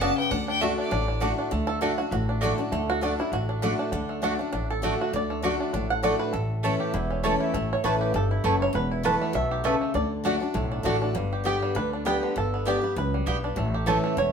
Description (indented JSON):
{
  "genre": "bluegrass",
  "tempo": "199 BPM",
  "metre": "4/4",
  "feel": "swing 56% on 8ths",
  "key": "D major",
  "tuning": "A4 = 439 Hz",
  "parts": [
    { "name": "bluegrass banjo", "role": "melody", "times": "0.0-14.3 s", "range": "D3 to F#5", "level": "-29 LUFS", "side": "right 2 dB", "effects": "none" },
    { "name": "clear fiddle", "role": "melody", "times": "0.0-1.2 s", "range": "D5 to A5", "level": "-29 LUFS", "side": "left 2 dB", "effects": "none" },
    { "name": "picked steel-string acoustic guitar", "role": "accompaniment", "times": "0.0-14.3 s", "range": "E2 to G4", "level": "-28 LUFS", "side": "left 2 dB", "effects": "none" },
    { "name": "mandolin", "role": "stabs", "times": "0.0-14.0 s", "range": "A3 to A5", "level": "-29 LUFS", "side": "right 2 dB", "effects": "none" },
    { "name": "upright bass", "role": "bass", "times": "0.0-14.3 s", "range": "E1 to D2", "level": "-30 LUFS", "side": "equal", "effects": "none" }
  ],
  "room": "moderate stone room reverb, RT60 1.0 s",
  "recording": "band playing live in one room",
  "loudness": "-23 LUFS",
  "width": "side -6 dB against mid",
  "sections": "0.0-1.5 A section; 1.5-11.2 A section; 11.2-14.3 A section",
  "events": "fiddle solo 0.0-1.5; five-string banjo solo 1.5-14.3",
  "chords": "0.3 D; 6.3 A; 8.7 Esus4; 9.9 D; 11.2 G; 13.6 A"
}